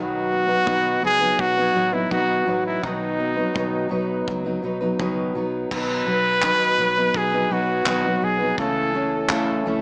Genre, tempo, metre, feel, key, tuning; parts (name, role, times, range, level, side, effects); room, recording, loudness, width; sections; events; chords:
acoustic pop; 83 BPM; 4/4; straight; A4 = 440 Hz
clear trumpet; melody; 0.0-9.3 s; D#4 to B4; -21 LUFS; equal; plate reverb, digital delay
fingerpicked steel-string acoustic guitar; accompaniment; 0.0-9.8 s; B2 to B4; -24 LUFS; equal
nylon-string guitar; arpeggios; 0.0-9.8 s; E3 to A4; -34 LUFS; equal
vintage muted fingered electric bass; bass; 0.0-9.8 s; A1 to B2; -35 LUFS; equal
modern studio drum kit; drums; 0.7-9.5 s; crash cymbal, handclaps, kick drum; -28 LUFS; equal
moderate studio reverb, RT60 0.9 s; small speaker sound; -19 LUFS; side -40 dB against mid
0.0-5.7 A section; 5.7-9.8 B section
0.0 B; 8.6 A/C#